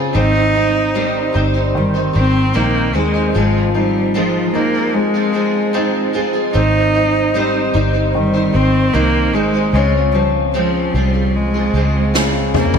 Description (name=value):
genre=pop ballad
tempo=75 BPM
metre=4/4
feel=straight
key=Ab major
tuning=A4 = 440 Hz
part: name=clear concert grand piano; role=accompaniment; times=0.0-12.8 s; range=Db3 to Eb4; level=-20 LUFS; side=left 2 dB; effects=lush chorus
part: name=picked steel-string acoustic guitar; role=arpeggios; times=0.0-12.8 s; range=Ab2 to C5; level=-21 LUFS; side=right 2 dB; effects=ensemble chorus
part: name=vintage muted fingered electric bass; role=bass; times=0.1-12.8 s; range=F1 to Eb2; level=-18 LUFS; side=equal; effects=none
part: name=rich cello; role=melody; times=0.2-12.8 s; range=F3 to Eb4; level=-18 LUFS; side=equal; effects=ping-pong delay
part: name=unplugged drum kit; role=drums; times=12.1-12.8 s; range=snare drum, toms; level=-16 LUFS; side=equal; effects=gated reverb
room=moderate lush hall reverb, RT60 2.7 s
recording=bright 1980s-style digital production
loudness=-13 LUFS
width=side -6 dB against mid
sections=0.0-12.8 A section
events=drum fill 12.1-12.8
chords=0.1 Abmaj7; 3.3 Fm7; 6.5 Abmaj7; 9.7 Dbmaj7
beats=| 0.15 0.95 1.75 2.55 | 3.35 4.15 4.95 5.75 | 6.55 7.35 8.15 8.95 | 9.75 10.55 11.35 12.15